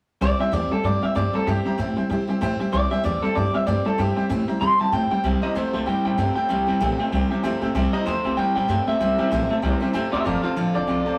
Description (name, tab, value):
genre	rockabilly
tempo	191 BPM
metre	4/4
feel	swing 59% on 8ths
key	C major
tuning	A4 = 441 Hz
part	electric guitar through a small old amp	melody	0.2-11.2 s	F4 to C6	-26 LUFS	equal	none
part	clear upright piano	accompaniment	0.2-11.1 s	C5 to Bb5	-34 LUFS	equal	none
part	picked steel-string acoustic guitar	accompaniment	0.2-11.2 s	C3 to A4	-32 LUFS	equal	none
part	electric guitar through a small old amp	riff	0.2-11.2 s	F2 to A3	-27 LUFS	equal	none
part	upright bass	bass	0.2-11.2 s	F1 to C3	-30 LUFS	equal	none
room	wet small room reverb, RT60 0.6 s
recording	rough rehearsal-room recording, tube saturation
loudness	-22 LUFS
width	mono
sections	0.2-5.2 A section; 5.2-11.2 B section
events	none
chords	0.2 C; 10.3 F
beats	| 0.22 0.53 0.84 1.16 | 1.47 1.79 2.10 2.42 | 2.73 3.04 3.36 3.67 | 3.99 4.30 4.62 4.93 | 5.24 5.56 5.87 6.18 | 6.50 6.81 7.12 7.44 | 7.75 8.06 8.38 8.69 | 9.00 9.32 9.63 9.94 | 10.26 10.57 10.88